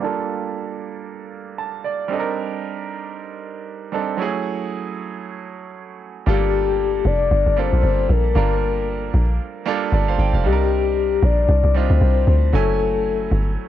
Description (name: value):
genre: amapiano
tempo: 115 BPM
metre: 4/4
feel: swing 58% on 16ths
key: G minor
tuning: A4 = 440 Hz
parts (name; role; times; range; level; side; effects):
- bright baby grand piano; accompaniment; 0.0-13.7 s; F#3 to A5; -25 LUFS; right 8 dB; low-pass filter, cassette tape
- soft octave-layered synth lead; melody; 6.3-13.5 s; G4 to D5; -21 LUFS; left 8 dB; chorus, tremolo, tape echo
- deep log drum bass; bass; 6.3-13.6 s; F1 to D2; -18 LUFS; equal; none
room: light reverb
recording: home recording on cassette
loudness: -17 LUFS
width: side -12 dB against mid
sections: 0.0-6.3 A section; 6.3-13.7 B section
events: filter sweep on grand piano 0.0-6.3; grand piano fill 1.3-2.1; drop 6.3-13.7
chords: 0.0 Gm9; 2.1 Cm9; 4.2 F#m9; 6.3 Gm9; 10.4 Cm9; 12.5 F#m9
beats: | 0.01 0.53 1.05 1.57 | 2.10 2.62 3.14 3.66 | 4.18 4.71 5.23 5.75 | 6.27 6.79 7.31 7.84 | 8.36 8.88 9.40 9.92 | 10.45 10.97 11.49 12.01 | 12.53 13.05 13.57